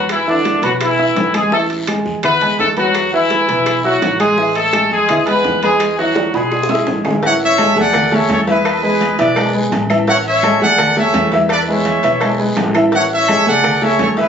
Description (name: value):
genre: latin, salsa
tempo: 168 BPM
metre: 4/4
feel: straight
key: A major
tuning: A4 = 442 Hz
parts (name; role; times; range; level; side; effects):
- clear horn section; melody; 0.0-7.0 s; D3 to B4; -14 LUFS; equal; none
- dark grand piano; accompaniment; 0.0-14.3 s; E3 to E6; -17 LUFS; equal; none
- upright bass; bass; 0.0-14.3 s; A1 to E2; -26 LUFS; equal; none
- bongos and cowbell; percussion; 0.1-14.3 s; none; -26 LUFS; left 3 dB; none
- claves; percussion; 0.1-13.8 s; none; -28 LUFS; left 3 dB; none
- congas; percussion; 0.1-14.3 s; none; -25 LUFS; left 3 dB; none
- guiro; percussion; 0.1-14.3 s; none; -32 LUFS; left 2 dB; none
- timbales and agogo bells; percussion; 0.1-14.2 s; none; -25 LUFS; right 4 dB; none
- bright trumpet section; melody; 7.2-14.3 s; G#4 to F#5; -14 LUFS; left 1 dB; none
room: moderate studio reverb, RT60 0.9 s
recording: recorded on a phone in the room, club reverb, nothing above 7.7 kHz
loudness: -12 LUFS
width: side -7 dB against mid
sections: 0.0-7.2 A section; 7.2-14.3 B section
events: drum fill 6.2-7.2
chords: 0.0 A5; 7.2 Amaj7; 8.7 E7; 10.1 Amaj7; 11.5 E; 12.9 Amaj7